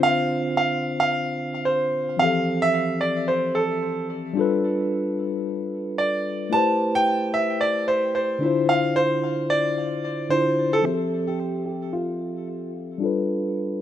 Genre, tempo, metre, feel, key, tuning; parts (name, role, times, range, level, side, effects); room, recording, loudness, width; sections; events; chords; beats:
amapiano; 111 BPM; 4/4; swing 58% on 16ths; A4 = 439 Hz
clear concert grand piano; melody; 0.0-12.7 s; F4 to A5; -23 LUFS; right 1 dB; low-pass filter, ping-pong delay
mellow tine electric piano; accompaniment; 0.0-13.8 s; D3 to E5; -24 LUFS; moving between left 5 dB and right 2 dB; auto-pan, low-pass filter
light reverb, small room ambience; rough home demo mix; -21 LUFS; side -11 dB against mid
0.0-10.9 A section; 10.9-13.8 B section
drop 0.0-10.9; filter sweep 10.9-13.8
0.0 Dm7; 2.2 Fmaj7; 4.4 G9; 6.5 Am7; 8.4 Dm9; 10.9 Fmaj7; 13.0 G9
| 0.04 0.58 1.12 1.67 | 2.21 2.75 3.29 3.83 | 4.37 4.91 5.45 5.99 | 6.53 7.07 7.61 8.15 | 8.69 9.23 9.77 10.31 | 10.86 11.39 11.94 12.48 | 13.02 13.56